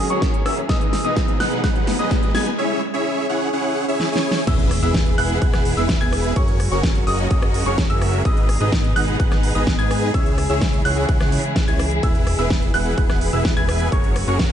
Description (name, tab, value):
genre	EDM, festival progressive house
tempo	127 BPM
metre	4/4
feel	straight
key	unclear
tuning	A4 = 440 Hz
part	warm symphonic string section	sustained chords	0.0-14.5 s	A#2 to G#4	-27 LUFS	equal	sidechain pumping, low-pass filter
part	bright concert grand piano	arpeggios	0.0-14.5 s	C#6 to G#6	-27 LUFS	equal	sidechain pumping, tape echo
part	dense compressed supersaw	riff	0.0-14.5 s	B3 to G#5	-23 LUFS	right 1 dB	sidechain pumping, low-pass filter, tape echo
part	riser and impact	sound effects	0.0-6.4 s	none	-28 LUFS	equal	none
part	big-room dance drum kit	drums	0.1-14.5 s	crash cymbal, hi-hat, rim click, snare drum	-26 LUFS	equal	none
part	electronic kick drum	drums	0.2-14.5 s	none	-20 LUFS	equal	none
part	fat analog bass	bass	4.5-14.5 s	E1 to G#2	-23 LUFS	equal	sidechain pumping
room	light reverb, digital ambience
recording	nothing above 10.4 kHz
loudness	-17 LUFS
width	side -10 dB against mid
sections	0.0-4.5 A section; 4.5-14.5 B section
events	build-up 0.0-4.5; drum fill 0.0-2.6, 4.0-4.5; riser 0.0-2.6; filter sweep on supersaw synth 0.0-4.5; filter sweep on grand piano 0.0-4.5; filter sweep on string section 0.0-4.5; drop 4.5-14.5; impact 4.5-6.4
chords	0.0 F#add9; 0.7 G#m; 2.6 C#m; 4.5 E; 6.4 F#add9; 8.3 G#m; 10.1 C#m; 12.0 E; 13.9 F#add9